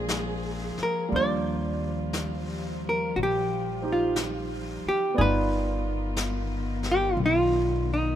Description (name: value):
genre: jazz ballad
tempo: 59 BPM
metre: 4/4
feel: swing 68% on 8ths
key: unclear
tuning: A4 = 440 Hz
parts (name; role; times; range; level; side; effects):
- clear grand piano; accompaniment; 0.0-8.2 s; G3 to D5; -32 LUFS; right 3 dB; none
- dark studio cello section; sustained chords; 0.0-8.2 s; Eb3 to Ab4; -35 LUFS; left 3 dB; none
- upright bass; bass; 0.0-8.2 s; G1 to Eb2; -30 LUFS; left 1 dB; none
- vintage brush drum kit; drums; 0.1-8.2 s; brushed snare drum, hi-hat, snare drum; -36 LUFS; left 2 dB; none
- hollow-body jazz guitar; melody; 0.8-8.2 s; Eb4 to D5; -26 LUFS; equal; none
room: light reverb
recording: minimal, uncompressed stereo recording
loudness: -24 LUFS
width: side -11 dB against mid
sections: 0.0-8.2 A section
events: none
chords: 0.0 Bb7; 1.1 Ebmaj9; 5.2 G7b13